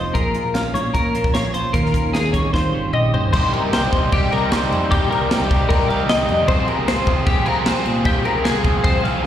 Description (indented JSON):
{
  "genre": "math rock and midwest emo",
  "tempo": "152 BPM",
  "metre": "4/4",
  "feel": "straight",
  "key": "unclear",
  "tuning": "A4 = 440 Hz",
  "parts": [
    { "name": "clean electric guitar", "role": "accompaniment", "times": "0.0-3.3 s", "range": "F2 to Bb4", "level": "-24 LUFS", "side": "right 5 dB", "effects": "slapback echo" },
    { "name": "twelve-string electric guitar", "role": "arpeggios", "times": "0.0-9.3 s", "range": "G4 to F5", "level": "-21 LUFS", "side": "left 4 dB", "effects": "analog chorus, slapback echo" },
    { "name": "growling fingered electric bass", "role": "bass", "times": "0.0-9.3 s", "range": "G1 to Eb3", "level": "-24 LUFS", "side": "equal", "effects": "overdrive" },
    { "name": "crisp fusion drum kit", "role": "drums", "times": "0.1-9.1 s", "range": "crash cymbal, hi-hat, kick drum, snare drum, toms", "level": "-20 LUFS", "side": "equal", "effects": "none" },
    { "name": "overdriven semi-hollow guitar", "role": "riff", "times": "3.3-9.3 s", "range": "C3 to Ab4", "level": "-21 LUFS", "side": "right 2 dB", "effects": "slapback echo" }
  ],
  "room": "studio reverb",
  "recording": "live gig heard through the venue's PA, recital hall reverb",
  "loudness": "-16 LUFS",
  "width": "side -10 dB against mid",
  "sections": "0.0-3.3 A section; 3.3-9.3 B section",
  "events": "drum fill 2.5-3.3",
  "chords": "0.1 Bbm9; 1.7 Eb13; 3.3 Cm7; 6.5 Fmadd9/C"
}